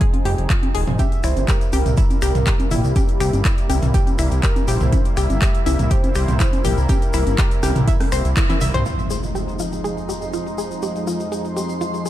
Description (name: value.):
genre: progressive house.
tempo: 122 BPM.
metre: 4/4.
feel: straight.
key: F minor.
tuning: A4 = 441 Hz.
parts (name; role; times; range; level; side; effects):
supersaw pad; sustained chords; 0.0-12.1 s; F2 to Ab4; -28 LUFS; equal; sidechain pumping, low-pass filter.
analog pluck; arpeggios; 0.0-12.1 s; E4 to E5; -26 LUFS; left 1 dB; chorus, sidechain pumping, tape echo.
electronic kick drum; drums; 0.0-8.5 s; none; -19 LUFS; equal; none.
house drum kit; drums; 0.0-12.1 s; finger snaps, handclaps, hi-hat, toms; -28 LUFS; equal; low-pass filter on hats, low-pass filter on snare, low-pass filter on toms.
punchy analog drum machine; percussion; 0.1-8.8 s; congas, rim click, toms; -25 LUFS; equal; sidechain pumping on perc, sidechain pumping on toms, sidechain pumping on snare.
fat analog bass; bass; 0.3-8.8 s; Eb1 to C2; -20 LUFS; equal; sidechain pumping.
warm velvety synth lead; melody; 1.0-8.6 s; G4 to E5; -29 LUFS; equal; chorus, sidechain pumping, tape echo.
tube shaker; percussion; 1.0-12.1 s; none; -36 LUFS; left 5 dB; none.
impact; sound effects; 8.9-10.8 s; none; -29 LUFS; equal; none.
backwards swelling texture; texture; 9.4-12.1 s; C5 to C6; -35 LUFS; right 1 dB; built-in reverb, sidechain pumping.
room: light reverb.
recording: dark, warm production.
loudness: -16 LUFS.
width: side -13 dB against mid.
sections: 0.0-8.9 A section; 8.9-12.1 B section.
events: filter sweep on supersaw synth 0.0-8.9; band accent 8.4; drum fill 8.5-8.9; impact 8.9-10.8; filter sweep on drum 8.9-12.1; filter sweep on synth arpeggio sound 8.9-12.1.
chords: 0.0 Fm7; 1.0 C7; 8.9 Fm7.